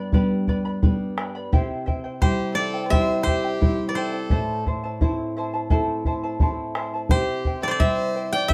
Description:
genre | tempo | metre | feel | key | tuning
andean folk, Andean ensemble | 86 BPM | 4/4 | straight | unclear | A4 = 436 Hz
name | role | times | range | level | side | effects
koto | melody | 0.0-8.5 s | B4 to G5 | -28 LUFS | equal | none
charango | accompaniment | 0.0-8.5 s | E4 to B5 | -32 LUFS | equal | none
nylon-string guitar | accompaniment | 0.0-8.5 s | G2 to E4 | -30 LUFS | equal | none
bombo | percussion | 0.1-8.5 s | none | -24 LUFS | equal | none
clear violin | second line | 2.2-8.5 s | G4 to D5 | -33 LUFS | equal | none
room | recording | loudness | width
moderate studio reverb, RT60 0.6 s | dark, warm production | -23 LUFS | mono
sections
0.0-8.5 A section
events
none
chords
0.0 G; 1.5 C; 4.3 Am; 7.1 C

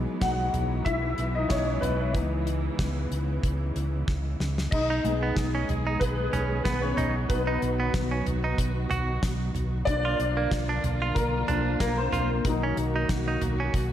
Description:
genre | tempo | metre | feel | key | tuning
piano-driven pop | 93 BPM | 4/4 | swing 56% on 16ths | unclear | A4 = 442 Hz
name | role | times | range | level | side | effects
warm concert grand piano | accompaniment | 0.0-13.9 s | E3 to F#5 | -29 LUFS | left 2 dB | ensemble chorus
warm studio string section | sustained chords | 0.0-13.9 s | C#3 to G#4 | -34 LUFS | right 2 dB | none
fingered electric bass | bass | 0.0-13.9 s | B1 to C#2 | -29 LUFS | equal | none
damped 70s drum kit | drums | 0.2-13.9 s | crash cymbal, hi-hat, kick drum, snare drum, toms | -31 LUFS | equal | none
direct-recorded clean electric guitar | riff | 4.9-13.7 s | A#3 to F#4 | -32 LUFS | right 4 dB | none
room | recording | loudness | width
moderate lush hall reverb, RT60 1.7 s | dreamy mix soaked in reverb | -24 LUFS | side -11 dB against mid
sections
0.0-4.7 A section; 4.7-13.9 B section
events
grand piano solo 0.0-4.7, 4.7-13.9; drum fill 4.1-4.7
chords
0.0 Emaj7/B; 2.1 C#m7; 4.7 G#m/B; 7.3 B; 9.9 A#/B; 12.4 D#m/B

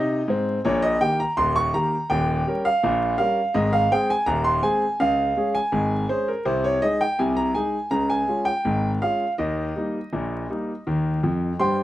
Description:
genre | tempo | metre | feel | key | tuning
ragtime piano | 82 BPM | 2/4 | straight | Ab major | A4 = 440 Hz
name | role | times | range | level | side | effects
warm concert grand piano | solo | 0.0-11.8 s | Eb1 to Db6 | -20 LUFS | equal | none
room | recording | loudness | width
light reverb | rough home demo mix, vinyl crackle | -20 LUFS | side -14 dB against mid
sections
0.0-11.8 A section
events
grand piano fill 11.2-11.8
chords
0.0 Ab; 0.6 Eb/Bb; 2.1 Eb7; 3.5 Ab; 5.0 Db5; 6.5 Ab/C; 7.9 Db; 9.4 Eb

